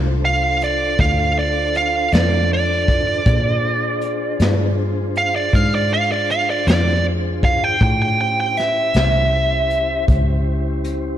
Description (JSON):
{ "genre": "slow blues", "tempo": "53 BPM (dotted quarters)", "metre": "12/8", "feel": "straight", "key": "D minor", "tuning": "A4 = 440 Hz", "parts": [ { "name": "mellow tonewheel organ", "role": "sustained chords", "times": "0.0-11.2 s", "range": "C#4 to C#5", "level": "-26 LUFS", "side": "left 2 dB", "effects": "slow rotary speaker" }, { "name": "vintage muted fingered electric bass", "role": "bass", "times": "0.0-11.2 s", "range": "C2 to Bb2", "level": "-20 LUFS", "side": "equal", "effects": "none" }, { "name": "smooth overdriven lead guitar", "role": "melody", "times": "0.2-10.1 s", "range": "D5 to G5", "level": "-19 LUFS", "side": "right 2 dB", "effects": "none" }, { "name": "vintage brush drum kit", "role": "drums", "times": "0.6-11.0 s", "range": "hi-hat, kick drum, snare drum", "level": "-20 LUFS", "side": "equal", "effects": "none" } ], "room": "moderate lush hall reverb, RT60 2.7 s", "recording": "big arena sound", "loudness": "-15 LUFS", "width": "side -11 dB against mid", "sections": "0.0-11.2 A section", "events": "lead electric guitar solo 0.0-11.2", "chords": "0.0 Dm7; 3.3 Bb7; 7.8 A7#9" }